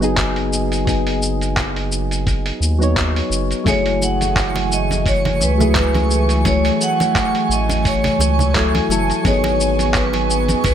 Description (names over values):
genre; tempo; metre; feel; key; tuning
sunset chillout; 86 BPM; 4/4; swing 55% on 16ths; F# dorian; A4 = 441 Hz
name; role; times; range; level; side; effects
soft electric-piano-like synth keys; accompaniment; 0.0-10.7 s; F#3 to G#5; -21 LUFS; moving between left 4 dB and right 4 dB; chorus, auto-pan, tape echo
round analog bass; bass; 0.0-10.7 s; F#1 to D#2; -20 LUFS; equal; none
dusty soul sampler-style drum kit; drums; 0.0-10.7 s; cabasa, handclaps, hi-hat; -23 LUFS; equal; none
electronic kick drum; drums; 0.2-10.7 s; none; -22 LUFS; equal; none
vibraphone with hard mallets; melody; 3.7-10.7 s; A4 to F#5; -21 LUFS; equal; tape echo
airy breathy pad; sustained chords; 4.1-10.7 s; E3 to G#5; -23 LUFS; right 1 dB; chorus
congas; percussion; 3.7-10.7 s; none; -26 LUFS; right 2 dB; none
twinkling granular texture; texture; 4.2-10.7 s; C#6; -30 LUFS; right 4 dB; built-in reverb
room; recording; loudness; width
light reverb, digital ambience; none; -15 LUFS; side -9 dB against mid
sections
0.0-10.7 A section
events
none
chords
0.0 G#m7; 3.7 F#m9; 9.2 G#m7